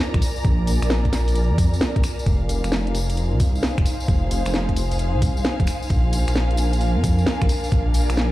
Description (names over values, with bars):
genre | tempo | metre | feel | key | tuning
UK garage, two-step garage | 132 BPM | 4/4 | swing 66% on 16ths | unclear | A4 = 440 Hz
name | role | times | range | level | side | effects
clear chamber violin section | sustained chords | 0.0-8.3 s | F5 to Bb5 | -35 LUFS | left 1 dB | sidechain pumping
ethereal airy pad | texture | 0.0-8.3 s | D4 to Ab5 | -28 LUFS | equal | ensemble chorus, built-in reverb, sidechain pumping
dark detuned saw bass | bass | 0.1-8.3 s | F1 to F2 | -21 LUFS | equal | none
electronic kick drum | drums | 0.1-7.8 s | none | -21 LUFS | equal | small room ambience
garage drum kit | drums | 0.1-8.3 s | finger snaps, hi-hat, snare drum | -25 LUFS | equal | small room ambience
tambourine | percussion | 0.2-8.3 s | none | -36 LUFS | left 3 dB | none
room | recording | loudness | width
light reverb | played on a big sound system in a bare room, large studio reverb, vinyl crackle | -18 LUFS | side -16 dB against mid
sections
0.0-8.3 A section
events
none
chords
0.0 Bb7; 2.3 Fm7; 5.7 Bb7